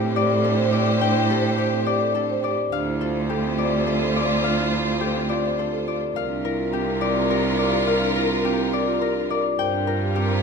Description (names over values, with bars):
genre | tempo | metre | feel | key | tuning
classical, minimalist pattern music | 105 BPM | 3/4 | straight | unclear | A4 = 440 Hz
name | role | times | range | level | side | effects
concert harp | melody | 0.0-10.4 s | G4 to G5 | -25 LUFS | left 9 dB | none
mellow hollow alto flute | second line | 0.0-10.4 s | Bb4 to C5 | -32 LUFS | right 3 dB | none
rich symphonic string section | sustained chords | 0.0-10.4 s | F4 to C5 | -28 LUFS | left 2 dB | none
marimba with soft mallets | arpeggios | 0.0-10.4 s | C4 to C5 | -27 LUFS | right 6 dB | none
rich cello | bass | 0.0-10.4 s | C2 to A2 | -25 LUFS | right 3 dB | none
room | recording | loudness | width
wet recital hall reverb, RT60 1.7 s | none | -20 LUFS | side -5 dB against mid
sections
0.0-6.2 A section; 6.2-10.4 B section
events
none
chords
0.0 Am7; 2.7 Dm7; 6.2 C9sus4; 9.6 Gm7